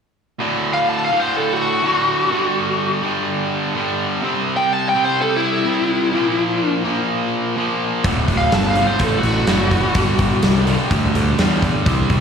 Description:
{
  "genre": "blues rock power trio and southern rock",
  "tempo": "126 BPM",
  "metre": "4/4",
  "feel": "straight",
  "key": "D mixolydian",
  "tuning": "A4 = 440 Hz",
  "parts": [
    { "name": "distorted electric guitar", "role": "riff", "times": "0.4-12.2 s", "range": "D2 to C4", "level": "-20 LUFS", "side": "right 1 dB", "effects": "overdrive, slapback echo" },
    { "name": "biting lead guitar", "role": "melody", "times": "0.7-10.6 s", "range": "E4 to A5", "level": "-20 LUFS", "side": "left 1 dB", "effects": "overdrive, slapback echo" },
    { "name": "fuzz picked electric bass", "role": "bass", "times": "8.0-12.2 s", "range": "D1 to E2", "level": "-19 LUFS", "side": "equal", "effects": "overdrive" },
    { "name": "big rock drum kit", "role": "drums", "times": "8.0-12.2 s", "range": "hi-hat, kick drum, snare drum", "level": "-20 LUFS", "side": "equal", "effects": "none" }
  ],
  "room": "light reverb, small room ambience",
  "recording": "live gig heard through the venue's PA, recital hall reverb",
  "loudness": "-16 LUFS",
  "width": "side -6 dB against mid",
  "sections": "0.4-12.2 A section",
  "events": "none",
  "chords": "0.4 D; 2.3 G5; 4.2 C; 6.1 Bb5; 8.0 D; 10.0 G5"
}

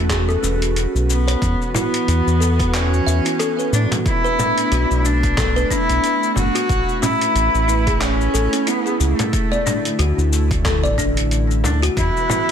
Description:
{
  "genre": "organic downtempo",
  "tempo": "91 BPM",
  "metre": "4/4",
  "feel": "swing 57% on 16ths",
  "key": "unclear",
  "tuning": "A4 = 439 Hz",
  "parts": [
    { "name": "dark cello", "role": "melody", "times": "0.0-12.5 s", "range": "A3 to F#4", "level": "-22 LUFS", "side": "equal", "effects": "digital delay" },
    { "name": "airy breathy pad", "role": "sustained chords", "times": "0.0-12.5 s", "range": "D3 to B4", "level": "-25 LUFS", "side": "right 1 dB", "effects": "chorus, sidechain pumping" },
    { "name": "round analog bass", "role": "bass", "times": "0.0-12.1 s", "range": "E1 to A2", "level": "-18 LUFS", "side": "equal", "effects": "tube saturation, sidechain pumping" },
    { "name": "kalimba", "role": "arpeggios", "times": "0.1-12.5 s", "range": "C#4 to E5", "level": "-24 LUFS", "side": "equal", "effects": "vintage 12-bit sampler grit, digital delay" },
    { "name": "dusty soul sampler-style drum kit", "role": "drums", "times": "0.1-12.5 s", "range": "handclaps, hi-hat, shaker", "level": "-26 LUFS", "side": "left 2 dB", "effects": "overdrive" },
    { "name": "electronic kick drum", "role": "drums", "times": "0.1-12.1 s", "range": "none", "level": "-23 LUFS", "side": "equal", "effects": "overdrive" },
    { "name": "frame drum", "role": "percussion", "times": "1.7-12.4 s", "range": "none", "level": "-25 LUFS", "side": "left 2 dB", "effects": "none" },
    { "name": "wind-like tuned noise texture", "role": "texture", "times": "12.1-12.5 s", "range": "B4 to B5", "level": "-30 LUFS", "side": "right 2 dB", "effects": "built-in reverb" }
  ],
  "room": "light reverb",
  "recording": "dense, heavily limited modern master",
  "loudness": "-16 LUFS",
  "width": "side -8 dB against mid",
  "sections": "0.0-1.4 A section; 1.4-12.5 B section",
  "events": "none",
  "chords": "0.0 Amaj7/E; 1.4 Esus4; 4.1 Bm7; 6.7 A; 9.3 D5; 12.0 E5"
}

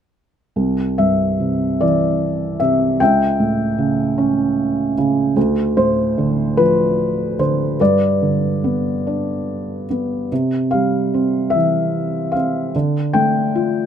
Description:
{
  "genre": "classical, lyrical solo piano",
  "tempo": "50 BPM (dotted quarters)",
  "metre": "6/8",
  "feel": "rubato",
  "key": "C major",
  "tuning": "A4 = 440 Hz",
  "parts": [
    { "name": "felt-muted upright piano", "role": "solo", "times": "0.6-13.9 s", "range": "C2 to G5", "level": "-15 LUFS", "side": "equal", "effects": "none" }
  ],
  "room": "little or no reverb",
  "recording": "close, detailed microphones",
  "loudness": "-15 LUFS",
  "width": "side -8 dB against mid",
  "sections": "0.5-13.9 A section",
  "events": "none",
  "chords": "0.5 Cadd9; 3.0 A7/C#; 5.4 Dm; 7.8 G; 10.3 C; 12.7 Dm"
}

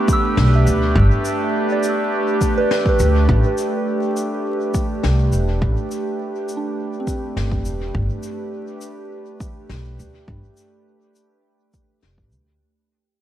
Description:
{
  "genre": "ambient dub",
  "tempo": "103 BPM",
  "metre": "4/4",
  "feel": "straight",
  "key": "unclear",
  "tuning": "A4 = 439 Hz",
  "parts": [
    { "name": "warbly tape-like pad", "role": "sustained chords", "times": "0.0-12.6 s", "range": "A3 to B4", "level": "-22 LUFS", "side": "right 1 dB", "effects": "chorus, built-in reverb" },
    { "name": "soft synth bell", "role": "arpeggios", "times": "0.0-8.1 s", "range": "B3 to E6", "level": "-25 LUFS", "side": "right 2 dB", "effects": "chorus, phaser, dub echo" },
    { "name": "cabasa and snare drum", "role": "drums", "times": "0.1-12.4 s", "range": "none", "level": "-30 LUFS", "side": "left 6 dB", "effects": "dub echo" },
    { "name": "electronic kick drum", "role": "drums", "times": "0.1-12.3 s", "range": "none", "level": "-21 LUFS", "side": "equal", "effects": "overdrive" },
    { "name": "upright bass", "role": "bass", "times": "0.4-12.6 s", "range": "E1 to D2", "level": "-17 LUFS", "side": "equal", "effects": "tube saturation" }
  ],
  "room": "light reverb, studio reverb",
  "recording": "vinyl crackle",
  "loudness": "-17 LUFS",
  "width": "side -12 dB against mid",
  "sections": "0.0-3.3 A section; 3.3-12.6 B section",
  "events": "fade-out 3.3-12.6",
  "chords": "0.0 Gadd9; 3.3 Am11; 7.9 Gadd9"
}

